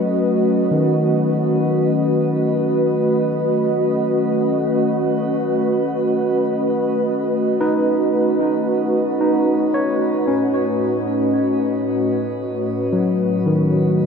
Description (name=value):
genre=ambient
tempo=56 BPM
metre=3/4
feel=straight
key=unclear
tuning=A4 = 440 Hz
part: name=warm analog pad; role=sustained chords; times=0.0-14.1 s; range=A2 to D#5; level=-18 LUFS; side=equal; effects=chorus, shimmer reverb
part: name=overdriven tine electric piano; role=arpeggios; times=0.0-14.1 s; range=D#3 to C#5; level=-21 LUFS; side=left 1 dB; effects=diffuse ambient delay, shimmer reverb
room=wet huge ambient reverb, RT60 8.1 s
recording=none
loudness=-16 LUFS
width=side -6 dB against mid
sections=0.0-14.1 A section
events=none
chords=0.0 G#m7 (rootless); 10.3 A